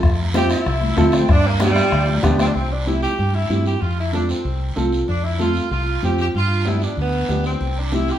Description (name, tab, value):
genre	latin, cumbia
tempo	190 BPM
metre	4/4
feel	straight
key	C major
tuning	A4 = 440 Hz
part	deep dub fingered electric bass	bass	0.0-8.1 s	C2 to G2	-21 LUFS	equal	none
part	bombo	percussion	0.0-2.6 s	none	-20 LUFS	left 2 dB	none
part	guiro	percussion	0.0-8.2 s	none	-33 LUFS	right 3 dB	none
part	congas	percussion	0.2-8.1 s	none	-26 LUFS	left 3 dB	none
part	warm saxophone section	melody	0.3-8.2 s	G3 to G4	-23 LUFS	right 1 dB	none
part	dark upright piano	accompaniment	0.3-8.1 s	B3 to C5	-23 LUFS	right 2 dB	none
room	wet large studio reverb, RT60 1.0 s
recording	band playing live in one room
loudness	-17 LUFS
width	side -11 dB against mid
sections	0.0-2.6 A section; 2.6-8.2 B section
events	saxophone section solo 0.0-2.6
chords	0.0 F; 1.3 G; 2.6 C; 3.8 F; 6.3 G7; 7.6 C